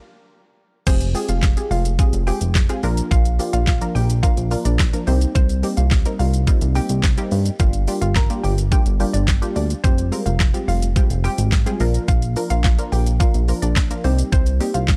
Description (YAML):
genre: dance-pop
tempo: 107 BPM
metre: 4/4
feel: straight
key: unclear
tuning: A4 = 440 Hz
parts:
  - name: hollow square pluck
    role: melody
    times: 0.9-15.0 s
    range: C4 to Bb5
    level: -31 LUFS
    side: equal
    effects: chorus, sidechain pumping, tape echo
  - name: punchy chord stab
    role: accompaniment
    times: 0.9-14.9 s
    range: F3 to Bb4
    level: -28 LUFS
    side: equal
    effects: chorus, sidechain pumping
  - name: chorused synth bass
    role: bass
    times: 0.9-15.0 s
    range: F1 to G2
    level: -22 LUFS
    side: equal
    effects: sidechain pumping
  - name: pop drum kit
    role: drums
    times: 0.9-15.0 s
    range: crash cymbal, handclaps, hi-hat, kick drum, shaker, snare drum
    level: -21 LUFS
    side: equal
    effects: none
room: digital ambience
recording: dry, gritty hardware recording, transformer saturation, cassette tape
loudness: -19 LUFS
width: mono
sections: 0.9-15.0 A section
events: stop 0.0-0.9; drop 0.9-15.0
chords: 0.0 N.C.; 0.9 Fmadd9; 2.8 Bb; 5.1 Cm7; 7.6 Gm7; 9.8 Fmadd9; 11.8 Bb; 14.0 Cm7